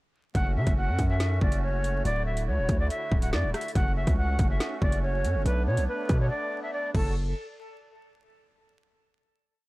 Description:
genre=hip hop, drill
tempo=141 BPM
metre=4/4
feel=half-time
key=F# minor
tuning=A4 = 440 Hz
part: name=breathy bright jazz flute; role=melody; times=0.3-7.1 s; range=A4 to F#5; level=-32 LUFS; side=equal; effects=low-pass filter, digital delay
part: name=distorted 808-style bass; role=bass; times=0.3-7.3 s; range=D1 to C#3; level=-27 LUFS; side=equal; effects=distortion
part: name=drill drum kit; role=drums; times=0.3-7.0 s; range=crash cymbal, hi-hat, kick drum, rim click, snare drum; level=-27 LUFS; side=equal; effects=overdrive
part: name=musette accordion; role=sustained chords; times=0.4-7.1 s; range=D3 to C#5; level=-37 LUFS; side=right 2 dB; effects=none
room=digital ambience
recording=dark, warm production, vinyl crackle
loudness=-24 LUFS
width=side -20 dB against mid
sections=0.3-7.2 hook; 7.2-8.9 final hit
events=break 6.3-7.2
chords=0.3 F#m; 2.1 Dadd9; 3.8 F#m; 5.5 Bm7; 6.9 F#m; 7.2 N.C.

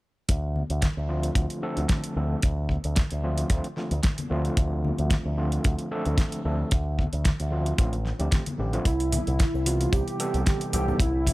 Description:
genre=nu-disco, nu disco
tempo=112 BPM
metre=4/4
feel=swing 54% on 16ths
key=D dorian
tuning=A4 = 441 Hz
part: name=picked electric bass with an envelope filter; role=bass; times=0.3-11.3 s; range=A1 to D2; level=-27 LUFS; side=equal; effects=tube saturation
part: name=kick drum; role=drums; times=0.3-11.3 s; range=none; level=-23 LUFS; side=equal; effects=none
part: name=pop drum kit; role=drums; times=0.3-11.3 s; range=hi-hat, snare drum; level=-32 LUFS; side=equal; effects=none
part: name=congas and tube shaker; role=percussion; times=0.6-11.3 s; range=none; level=-35 LUFS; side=left 2 dB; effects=none
part: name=overdriven tine electric piano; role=accompaniment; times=1.1-11.0 s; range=C3 to A4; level=-31 LUFS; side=equal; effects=fast tremolo, vintage 12-bit sampler grit, sidechain pumping, low-pass filter, tape echo
part: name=wide unison lead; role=melody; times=8.9-11.3 s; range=E4 to G4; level=-28 LUFS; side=right 2 dB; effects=wide subtle chorus
room=studio ambience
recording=dry, gritty hardware recording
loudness=-23 LUFS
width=side -19 dB against mid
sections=0.3-11.3 A section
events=none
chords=0.3 Dm7; 8.9 Cmaj7

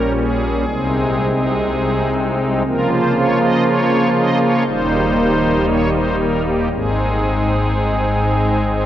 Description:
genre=classical, chorale-style piece for pipe organ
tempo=57-61 BPM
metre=4/4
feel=rubato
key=Ab major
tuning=A4 = 440 Hz
part: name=pipe organ, strings celeste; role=solo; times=0.0-8.9 s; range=Eb1 to Eb5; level=-14 LUFS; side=equal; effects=none
room=wet cathedral reverb, RT60 4.6 s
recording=worn, warbling old tape, cassette tape, warbly pitch drift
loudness=-14 LUFS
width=side -11 dB against mid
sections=0.0-8.9 A section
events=none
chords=0.0 Gdim/Bb; 0.7 Ab/C; 2.7 Bbm/Db; 4.7 Eb; 6.7 Ab

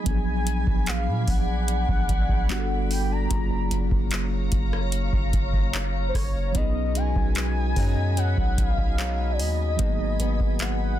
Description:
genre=contemporary R&B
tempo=74 BPM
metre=4/4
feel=straight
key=F# major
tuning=A4 = 439 Hz
part: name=mellow tine electric piano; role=accompaniment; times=0.0-11.0 s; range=E#3 to A4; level=-31 LUFS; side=right 1 dB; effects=medium stereo tremolo
part: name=glassy FM pad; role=sustained chords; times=0.0-11.0 s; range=G#4 to B5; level=-36 LUFS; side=equal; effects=ensemble chorus, built-in reverb
part: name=warm velvety synth lead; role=melody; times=0.1-11.0 s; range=B#4 to A#5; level=-32 LUFS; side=left 1 dB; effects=chorus, ping-pong delay
part: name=long sustained 808-style bass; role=bass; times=0.1-11.0 s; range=F#1 to A#2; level=-26 LUFS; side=equal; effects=none
part: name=booming analog drum machine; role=drums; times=0.1-10.8 s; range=handclaps, hi-hat, kick drum, rim click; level=-25 LUFS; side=equal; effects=none
part: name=fingerpicked swing-style acoustic guitar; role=arpeggios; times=6.6-11.0 s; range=G#2 to D#4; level=-34 LUFS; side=left 9 dB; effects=none
room=digital ambience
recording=dense, heavily limited modern master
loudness=-22 LUFS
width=side -12 dB against mid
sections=0.0-11.0 A section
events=none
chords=0.1 A#7b9b13; 2.5 Gmaj7; 3.3 F#maj7; 6.5 B6; 9.8 G#m7

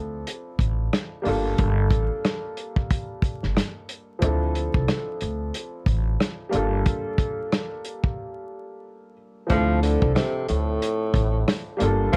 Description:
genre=hip hop, boom-bap hip-hop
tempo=91 BPM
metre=4/4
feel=swing 59% on 16ths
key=D minor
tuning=A4 = 437 Hz
part: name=warm upright piano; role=accompaniment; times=0.0-12.2 s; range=F3 to A4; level=-31 LUFS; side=equal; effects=high-pass filter, low-pass filter, plate reverb
part: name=upright bass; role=bass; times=0.0-12.2 s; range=G1 to D2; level=-26 LUFS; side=equal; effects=transformer saturation
part: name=warm soul drum kit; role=drums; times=0.3-12.2 s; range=hi-hat, kick drum, rim click, snare drum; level=-27 LUFS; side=equal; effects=none
part: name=warm tenor saxophone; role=melody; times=9.5-12.2 s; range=A2 to F3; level=-28 LUFS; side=equal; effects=high-pass filter, low-pass filter, plate reverb
room=light reverb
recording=worn, warbling old tape, cassette tape, vinyl crackle, warbly pitch drift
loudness=-24 LUFS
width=mono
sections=0.0-9.5 A section; 9.5-12.2 B section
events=break 6.9-9.5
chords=0.0 Dm9; 1.3 Gm9; 4.2 Dm9; 6.5 Gm9; 9.5 Dm9

